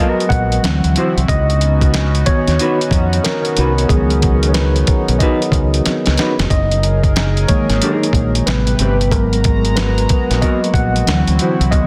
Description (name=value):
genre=R&B, neo-soul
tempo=92 BPM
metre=4/4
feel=swing 63% on 16ths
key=unclear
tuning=A4 = 440 Hz
part: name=hollow-body jazz guitar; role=second line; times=0.0-11.5 s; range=B3 to C5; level=-24 LUFS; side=equal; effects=none
part: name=mellow tine electric piano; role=accompaniment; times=0.0-11.9 s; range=C3 to F#5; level=-20 LUFS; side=equal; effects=none
part: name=chorused pulse-width pad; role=sustained chords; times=0.0-11.9 s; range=C#3 to A#5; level=-26 LUFS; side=equal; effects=none
part: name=dusty soul sampler-style drum kit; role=drums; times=0.2-11.9 s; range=hi-hat, kick drum, snare drum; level=-20 LUFS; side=equal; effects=none
part: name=deep dub fingered electric bass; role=bass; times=0.3-11.9 s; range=E#1 to E#2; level=-18 LUFS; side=equal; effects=none
room=light reverb, digital ambience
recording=dense, heavily limited modern master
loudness=-15 LUFS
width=mono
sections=0.0-11.9 A section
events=tine electric piano solo 0.0-11.9; drum fill 5.9-6.5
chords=0.0 G#m9; 0.6 D9; 1.3 C#9sus4; 6.5 F#69; 8.5 Am9; 9.1 G#m9; 11.1 D9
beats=0.63 | 1.29 1.94 2.59 3.24 | 3.90 4.55 5.20 5.85 | 6.50 7.16 7.81 8.46 | 9.11 9.77 10.42 11.07 | 11.72